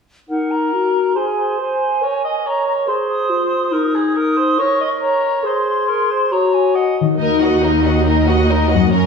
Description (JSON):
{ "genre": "cinematic", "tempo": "140 BPM", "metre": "4/4", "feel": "straight", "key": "Eb dorian", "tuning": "A4 = 440 Hz", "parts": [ { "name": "silver concert flute", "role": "second line", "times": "0.3-7.0 s", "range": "Gb5 to Eb6", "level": "-20 LUFS", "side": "equal", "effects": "none" }, { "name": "warm clarinet", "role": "second line", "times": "0.3-7.0 s", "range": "Eb4 to C5", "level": "-20 LUFS", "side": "left 4 dB", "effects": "none" }, { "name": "warm cor anglais", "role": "second line", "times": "0.3-7.0 s", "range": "Ab4 to Eb5", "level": "-20 LUFS", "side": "right 3 dB", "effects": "none" }, { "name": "concert harp", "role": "arpeggios", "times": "7.0-9.1 s", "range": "Gb2 to Bb4", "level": "-18 LUFS", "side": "left 7 dB", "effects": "none" }, { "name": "warm symphonic violin section", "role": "melody", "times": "7.2-9.1 s", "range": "Eb5 to Bb5", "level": "-25 LUFS", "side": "equal", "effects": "none" }, { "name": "warm symphonic violin section", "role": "second line", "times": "7.2-9.1 s", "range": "Bb4 to Eb5", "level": "-21 LUFS", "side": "left 2 dB", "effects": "none" }, { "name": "warm symphonic viola section", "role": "accompaniment", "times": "7.2-9.1 s", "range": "Db4 to Gb4", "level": "-18 LUFS", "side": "left 1 dB", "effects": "none" }, { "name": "rich symphonic cello section", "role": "bass", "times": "7.2-9.1 s", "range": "Eb2 to Gb2", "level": "-16 LUFS", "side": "right 2 dB", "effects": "none" } ], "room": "wet scoring stage reverb, RT60 1.5 s", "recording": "small room ambience", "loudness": "-14 LUFS", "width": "side -5 dB against mid", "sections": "0.3-7.2 A section; 7.2-9.1 B section", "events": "build-up 7.2-9.1", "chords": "0.3 Ebm; 1.2 Ab; 2.0 Bbm; 2.9 Ab; 3.7 Eb5; 4.6 Bbm; 5.4 Abadd9; 6.3 Gb; 7.2 Ebm" }